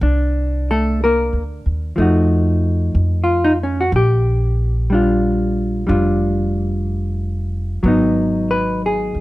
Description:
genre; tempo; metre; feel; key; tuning
jazz ballad; 61 BPM; 4/4; swing 67% on 8ths; unclear; A4 = 440 Hz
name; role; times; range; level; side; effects
hollow-body jazz guitar; accompaniment; 0.0-9.2 s; F3 to B4; -17 LUFS; equal; none
upright bass; bass; 0.0-9.2 s; E#1 to F2; -19 LUFS; equal; none
room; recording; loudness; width
light reverb; close, detailed microphones; -15 LUFS; side -18 dB against mid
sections
0.0-9.2 A section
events
none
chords
0.0 Cm9; 2.0 F7b9; 3.9 A#6; 7.8 G#m7

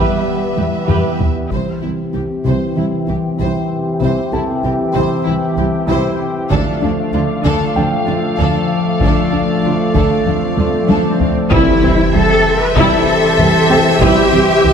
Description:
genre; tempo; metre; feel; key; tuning
cinematic, hybrid orchestral and electronic film score; 96 BPM; 4/4; straight; unclear; A4 = 440 Hz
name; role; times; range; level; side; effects
warm symphonic violin section; second line; 0.0-14.7 s; D4 to E5; -24 LUFS; left 3 dB; none
warm symphonic viola section; accompaniment; 0.0-14.7 s; G3 to B4; -22 LUFS; right 1 dB; low-pass filter
chorused pulse-width pad; sustained chords; 0.0-14.7 s; E3 to E5; -18 LUFS; equal; low-pass filter
warm French horn section; sustained chords; 0.0-1.2, 11.5-14.2 s; G3 to E5; -26 LUFS; left 4 dB; low-pass filter
tight sequenced synth; arpeggios; 0.0-14.7 s; C3 to D4; -23 LUFS; left 2 dB; chorus, low-pass filter
rich symphonic double bass section; bass; 0.0-14.7 s; C2 to E2; -21 LUFS; right 3 dB; none
warm symphonic cello section; bass; 0.0-14.7 s; C3 to B4; -18 LUFS; right 1 dB; none
dark concert grand piano; texture; 0.0-14.7 s; G4 to A5; -26 LUFS; left 2 dB; none
taiko ensemble; drums; 0.6-2.7, 6.5-14.6 s; none; -19 LUFS; left 1 dB; none
warm symphonic violin section; melody; 1.5-14.7 s; E5 to G5; -25 LUFS; left 4 dB; low-pass filter
swell and impact; sound effects; 10.4-14.0 s; none; -22 LUFS; left 1 dB; none
warm trombone section; sustained chords; 11.5-14.2 s; C3 to E3; -26 LUFS; right 4 dB; none
room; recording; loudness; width
wet scoring stage reverb, RT60 1.8 s; none; -12 LUFS; side -7 dB against mid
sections
0.0-1.5 A section; 1.5-11.5 B section; 11.5-14.7 C section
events
drum fill 0.6-1.5, 10.6-11.5; filter sweep 1.5-11.5; swell 10.4-11.5; impact 11.5-14.0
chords
0.0 Em; 1.5 C; 6.5 Dm; 11.5 C

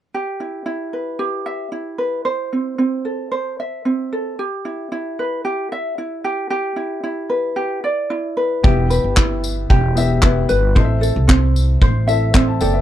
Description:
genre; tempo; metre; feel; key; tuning
acoustic pop; 113 BPM; 4/4; straight; E minor; A4 = 440 Hz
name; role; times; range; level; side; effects
ukulele; accompaniment; 0.1-12.8 s; C4 to E5; -20 LUFS; right 1 dB; none
warm upright piano; accompaniment; 8.6-12.8 s; B3 to A5; -24 LUFS; left 6 dB; none
upright bass; bass; 8.6-12.8 s; E1 to C2; -17 LUFS; equal; none
loose indie drum kit; drums; 8.6-12.7 s; handclaps, kick drum, tambourine; -16 LUFS; equal; none
room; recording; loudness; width
little or no reverb; none; -17 LUFS; side -12 dB against mid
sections
0.1-8.6 A section; 8.6-12.8 B section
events
none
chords
0.1 Em; 2.3 Am; 4.4 Em; 6.2 G6; 8.6 Em; 10.8 Am

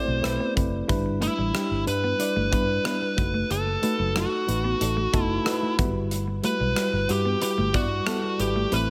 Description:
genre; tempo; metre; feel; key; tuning
1980s-style pop; 92 BPM; 4/4; straight; unclear; A4 = 442 Hz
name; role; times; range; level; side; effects
fuzz lead guitar; melody; 0.0-8.9 s; E4 to C5; -30 LUFS; equal; distortion
FM electric piano; accompaniment; 0.0-8.9 s; F#3 to D5; -31 LUFS; equal; none
clean electric guitar; riff; 0.0-8.7 s; F#3 to C4; -34 LUFS; equal; subtle chorus
vintage muted fingered electric bass; bass; 0.1-8.9 s; F#1 to G2; -31 LUFS; equal; none
modern studio drum kit; drums; 0.2-8.9 s; hi-hat, kick drum, rim click; -31 LUFS; equal; gated reverb
room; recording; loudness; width
light reverb, small room ambience; none; -25 LUFS; mono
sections
0.0-8.9 A section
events
none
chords
0.0 Amadd9; 0.9 G6; 3.2 B7/F#; 5.8 Emadd9/G

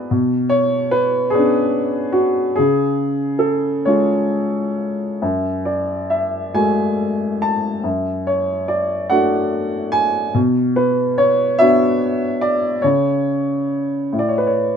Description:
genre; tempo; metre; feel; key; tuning
classical, lyrical solo piano; 44-49 BPM (dotted quarters); 6/8; rubato; unclear; A4 = 444 Hz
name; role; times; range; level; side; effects
warm upright piano; solo; 0.0-14.8 s; F#2 to A5; -16 LUFS; equal; none
room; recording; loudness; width
light reverb; minimal, uncompressed stereo recording; -16 LUFS; side -7 dB against mid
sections
0.0-14.8 A section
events
none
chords
0.1 Bmadd9; 2.6 C#; 5.2 F#madd9; 7.8 D/F#; 10.3 Bm; 12.8 N.C.

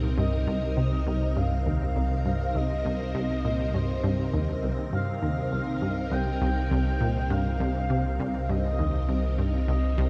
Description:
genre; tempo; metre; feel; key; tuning
ambient, sequencer-driven space music; 101 BPM; 4/4; straight; unclear; A4 = 441 Hz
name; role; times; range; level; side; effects
phased string machine; sustained chords; 0.0-10.1 s; C3 to Bb4; -35 LUFS; equal; ensemble chorus, phaser
warm sub bass; bass; 0.0-10.1 s; C2; -32 LUFS; equal; none
expressive synth lead; melody; 0.2-10.1 s; C5 to G5; -36 LUFS; equal; lush chorus, tape echo
resonant blip pluck; riff; 0.2-10.1 s; C2 to C3; -30 LUFS; equal; chorus, tape echo
room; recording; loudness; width
wet huge ambient reverb, RT60 8.2 s; dark, warm production; -27 LUFS; mono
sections
0.0-10.1 A section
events
none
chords
0.0 Cm7

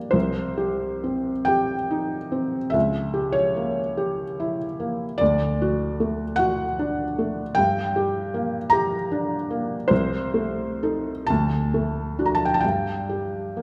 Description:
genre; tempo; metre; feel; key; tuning
classical, romantic nocturne for solo piano; 41-53 BPM; 4/4; rubato; unclear; A4 = 440 Hz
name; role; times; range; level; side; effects
felt-muted upright piano; solo; 0.0-13.6 s; C2 to Bb5; -24 LUFS; equal; none
room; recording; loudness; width
wet recital hall reverb, RT60 1.9 s; recorded in a church or concert hall; -24 LUFS; mono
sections
0.0-13.6 A section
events
none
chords
0.1 Cm; 2.8 C#dim7; 5.2 D; 7.6 Gm; 9.9 Adim/C; 11.3 D; 12.6 N.C.

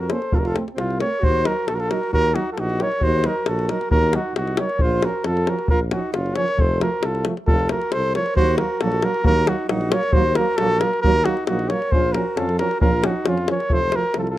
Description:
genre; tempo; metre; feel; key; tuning
balkan folk, Balkan brass band; 135 BPM; 2/4; straight; unclear; A4 = 444 Hz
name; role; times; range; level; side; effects
dark trumpet; melody; 0.0-14.4 s; F4 to Db5; -22 LUFS; equal; plate reverb
warm alto saxophone; second line; 0.0-14.4 s; C4 to Bb4; -28 LUFS; right 4 dB; plate reverb
mellow tuba; bass; 0.0-14.4 s; F1 to F2; -24 LUFS; equal; none
bright trombone; accompaniment; 0.1-14.2 s; A3 to Eb4; -33 LUFS; left 4 dB; plate reverb
dark euphonium; accompaniment; 0.1-14.2 s; F3 to Bb3; -28 LUFS; right 4 dB; none
davul; percussion; 0.1-14.3 s; none; -22 LUFS; left 1 dB; none
room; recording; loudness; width
moderate small room reverb, RT60 0.5 s; rough home demo mix; -18 LUFS; side -14 dB against mid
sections
0.0-1.2 A section; 1.2-8.4 B section; 8.4-14.4 B section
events
none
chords
0.3 F; 1.2 Ebm; 4.8 Bbm; 6.6 F; 8.4 Ebm; 11.9 Bbm; 13.7 F

